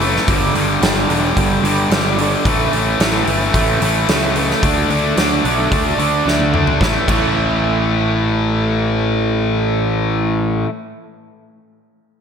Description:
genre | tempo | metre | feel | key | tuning
hard rock | 110 BPM | 4/4 | straight | unclear | A4 = 440 Hz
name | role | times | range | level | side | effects
cranked stack guitar | riff | 0.0-10.7 s | G2 to D4 | -19 LUFS | right 8 dB | overdrive, analog chorus
tight distorted guitar | riff | 0.0-10.7 s | G2 to D4 | -19 LUFS | left 10 dB | distortion
fuzz picked electric bass | bass | 0.0-10.6 s | E1 to D2 | -20 LUFS | equal | overdrive
huge arena drum kit | drums | 0.0-7.2 s | crash cymbal, hi-hat, kick drum, snare drum, toms | -20 LUFS | equal | none
room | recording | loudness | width
moderate lush hall reverb, RT60 2.2 s | bright 1980s-style digital production | -14 LUFS | side -7 dB against mid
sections
0.0-6.8 A section; 6.8-11.2 B section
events
drum fill 6.3-6.8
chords
0.3 G5; 2.5 A; 4.6 D5; 6.8 A5

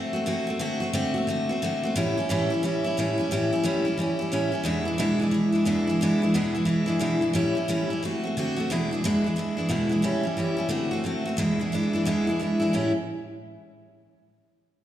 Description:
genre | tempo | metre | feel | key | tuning
rock | 178 BPM | 4/4 | swing 63% on 8ths | unclear | A4 = 440 Hz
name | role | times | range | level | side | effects
picked steel-string acoustic guitar | solo | 0.0-12.9 s | E2 to F#4 | -23 LUFS | equal | slapback echo
room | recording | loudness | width
light reverb, studio reverb | live gig heard through the venue's PA, recital hall reverb | -23 LUFS | side -12 dB against mid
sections
0.0-10.0 A section; 10.0-12.7 B section; 12.7-14.1 C section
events
none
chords
0.0 D7; 2.0 A7; 4.7 E7; 7.3 A7; 8.0 D7; 8.7 E7; 10.0 A7; 10.7 D7; 11.4 E7; 12.7 A7

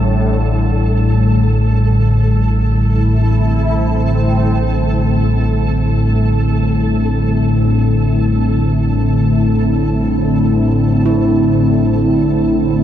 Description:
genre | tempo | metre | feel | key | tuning
dark ambient drone | free time | none | none | unclear | A4 = 436 Hz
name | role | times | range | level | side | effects
sweeping resonant pad | sustained chords | 0.0-12.8 s | A2 to E4 | -15 LUFS | left 1 dB | chorus
gamelan-type bossed gongs | arpeggios | 0.0-2.1, 11.1-12.8 s | E4 | -18 LUFS | right 5 dB | none
deep rumbling drone | drone | 0.0-12.8 s | A1 to A2 | -15 LUFS | equal | built-in reverb, wide subtle chorus
flickering grainy texture | texture | 0.0-12.8 s | A4 | -26 LUFS | right 2 dB | built-in reverb
room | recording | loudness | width
moderate huge ambient reverb, RT60 8.6 s | none | -12 LUFS | side -10 dB against mid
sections
0.0-12.8 A section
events
fade-out on synth texture 0.0-12.8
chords
0.0 C69/A

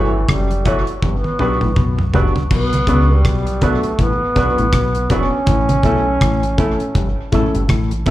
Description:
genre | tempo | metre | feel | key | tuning
roots reggae | 81 BPM | 4/4 | swing 60% on 16ths | unclear | A4 = 440 Hz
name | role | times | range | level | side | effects
clear trombone | melody | 0.0-7.3 s | E3 to C#4 | -21 LUFS | right 1 dB | tape echo, slapback echo
electric guitar with an envelope filter | accompaniment | 0.0-8.1 s | E3 to A4 | -26 LUFS | right 4 dB | spring reverb, tape echo, slapback echo
overdriven clav | riff | 0.0-8.1 s | E2 to C#3 | -23 LUFS | left 4 dB | slapback echo
dark upright piano | stabs | 0.0-8.1 s | A3 to C#5 | -22 LUFS | left 2 dB | slapback echo
warm sub bass | bass | 0.0-8.1 s | E1 to C#2 | -19 LUFS | equal | none
damped 70s drum kit | drums | 0.3-8.1 s | crash cymbal, hi-hat, kick drum, rim click, toms | -19 LUFS | equal | none
congas | percussion | 0.3-8.1 s | none | -24 LUFS | right 2 dB | none
room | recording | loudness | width
little or no reverb | live gig heard through the venue's PA, club reverb | -14 LUFS | side -15 dB against mid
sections
0.0-2.5 A section; 2.5-8.1 B section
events
drum fill 1.0-2.5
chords
0.0 F#m7; 1.0 Gmaj7; 2.5 Bm; 5.5 A

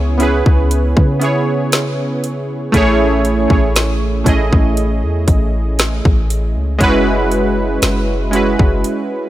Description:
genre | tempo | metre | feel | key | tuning
contemporary R&B | 59 BPM | 4/4 | straight | unclear | A4 = 441 Hz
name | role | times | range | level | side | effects
warm analog keys | accompaniment | 0.0-9.3 s | G#3 to D#5 | -16 LUFS | right 1 dB | chorus
clean 808-style bass | bass | 0.0-8.8 s | F#1 to C#3 | -17 LUFS | equal | none
trap drum kit | drums | 0.2-9.1 s | hi-hat, kick drum, snare drum | -15 LUFS | equal | none
room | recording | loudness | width
digital ambience | none | -12 LUFS | side -14 dB against mid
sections
0.0-9.3 A section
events
break 8.8-9.3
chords
0.0 C#m7; 2.7 Amaj7; 6.8 F#9sus4

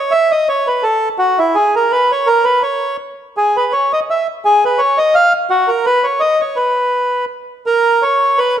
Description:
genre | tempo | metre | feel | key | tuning
musette | 167 BPM | 3/4 | swing 54% on 8ths | B major | A4 = 440 Hz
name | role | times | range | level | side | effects
bandoneon | solo | 0.0-8.6 s | E4 to E#5 | -12 LUFS | equal | none
room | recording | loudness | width
moderate recital hall reverb, RT60 1.6 s | none | -12 LUFS | side -10 dB against mid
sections
0.0-7.7 A section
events
none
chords
none

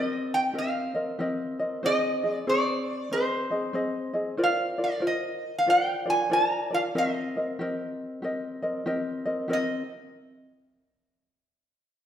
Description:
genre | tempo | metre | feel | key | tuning
Hawaiian | 94 BPM | 4/4 | swing 63% on 8ths | Eb major | A4 = 440 Hz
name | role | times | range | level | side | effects
metal-body resonator slide guitar | melody | 0.0-9.9 s | C5 to Bb5 | -26 LUFS | equal | none
tenor ukulele | accompaniment | 0.0-9.8 s | C4 to Eb5 | -28 LUFS | left 1 dB | none
room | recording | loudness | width
wet recital hall reverb, RT60 1.4 s | none | -25 LUFS | side -10 dB against mid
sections
0.0-9.5 A section; 9.5-12.1 B section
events
none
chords
0.0 Eb6; 1.8 Ab; 4.4 Bbadd9; 6.9 Eb6

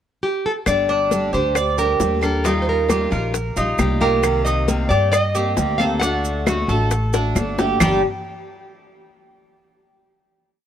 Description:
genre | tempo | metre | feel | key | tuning
latin, Cuban son and guajira | 134 BPM | 4/4 | straight | G minor | A4 = 436 Hz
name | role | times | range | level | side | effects
nylon-string guitar | melody | 0.2-8.0 s | G4 to G5 | -22 LUFS | right 1 dB | none
picked steel-string acoustic guitar | accompaniment | 0.7-8.0 s | G2 to G4 | -25 LUFS | left 2 dB | none
upright bass | bass | 0.7-8.0 s | G1 to G2 | -23 LUFS | equal | none
bongos | percussion | 0.7-7.9 s | none | -24 LUFS | left 6 dB | none
claves | percussion | 0.7-7.9 s | none | -25 LUFS | right 4 dB | none
congas | percussion | 0.7-7.9 s | none | -25 LUFS | left 1 dB | none
maracas | percussion | 0.7-7.9 s | none | -32 LUFS | right 8 dB | none
Cuban tres | arpeggios | 0.9-8.0 s | G3 to Eb5 | -23 LUFS | right 2 dB | none
room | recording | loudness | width
light reverb | none | -17 LUFS | side -9 dB against mid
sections
0.0-0.7 pickup bar; 0.7-7.8 verse; 7.8-9.6 final chord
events
drum fill 7.1-7.8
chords
0.0 N.C.; 0.7 G5; 2.4 Ebadd9; 4.2 Cm7; 6.0 D; 7.8 G5

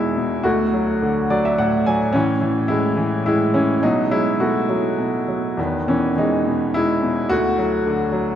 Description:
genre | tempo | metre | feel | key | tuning
classical, lyrical solo piano | 105 BPM | 3/4 | uneven beats, rubato | E major | A4 = 440 Hz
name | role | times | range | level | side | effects
clear baby grand piano | solo | 0.0-8.4 s | D2 to G#5 | -17 LUFS | equal | none
room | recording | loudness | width
wet church reverb, RT60 3.5 s | recorded in a church or concert hall | -17 LUFS | side -10 dB against mid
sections
0.0-8.4 A section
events
grand piano fill 1.0-2.1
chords
0.5 D; 2.1 Amaj7; 3.8 B5; 5.6 Emaj7; 7.3 D

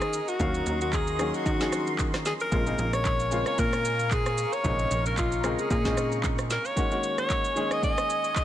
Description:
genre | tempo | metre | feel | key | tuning
amapiano | 113 BPM | 4/4 | swing 55% on 16ths | unclear | A4 = 440 Hz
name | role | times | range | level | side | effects
bright alto saxophone | melody | 0.0-8.4 s | F4 to Eb5 | -28 LUFS | left 1 dB | ping-pong delay
bright baby grand piano | accompaniment | 0.0-8.4 s | C3 to F5 | -32 LUFS | left 2 dB | none
lush unison pad | sustained chords | 0.0-8.4 s | Ab4 to Db6 | -36 LUFS | right 1 dB | chorus, phaser, sidechain pumping
plucky analog bass | bass | 0.0-6.6 s | Bb1 to Eb3 | -30 LUFS | equal | none
afro-pop drum kit | drums | 0.0-8.4 s | handclaps, kick drum, rim click, shaker, snare drum | -30 LUFS | right 1 dB | vintage 12-bit sampler grit
room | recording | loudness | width
light reverb | none | -24 LUFS | side -11 dB against mid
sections
0.0-8.4 A section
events
none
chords
0.0 Ebm7; 2.5 Bbm7; 6.8 Ab7sus4

